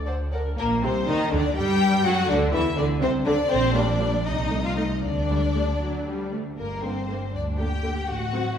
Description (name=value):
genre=quick classical-period movement for string orchestra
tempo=76-83 BPM (dotted quarters)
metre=6/8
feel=rubato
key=G minor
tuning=A4 = 439 Hz
part: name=rich studio double bass section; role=bass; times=0.0-8.6 s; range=G1 to G2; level=-28 LUFS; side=right 1 dB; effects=none
part: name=warm studio violin section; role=melody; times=0.1-8.6 s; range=Bb4 to G5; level=-29 LUFS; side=left 3 dB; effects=none
part: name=warm studio violin section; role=second line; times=0.1-8.6 s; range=Bb3 to D5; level=-28 LUFS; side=left 2 dB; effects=none
part: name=warm studio viola section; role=accompaniment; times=0.1-8.4 s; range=C3 to C5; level=-28 LUFS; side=right 1 dB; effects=none
part: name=warm studio cello section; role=bass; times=0.6-8.6 s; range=D2 to G3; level=-29 LUFS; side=right 1 dB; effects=none
room=wet recital hall reverb, RT60 1.4 s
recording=heard from further back in the room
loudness=-21 LUFS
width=side -8 dB against mid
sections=0.6-8.6 A section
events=none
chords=0.0 D; 0.6 Gm/Bb; 2.1 D9; 3.5 Gm/Bb; 4.3 Adim/C; 5.0 Dsus4; 5.8 D; 6.6 Gm; 8.1 F#dim/A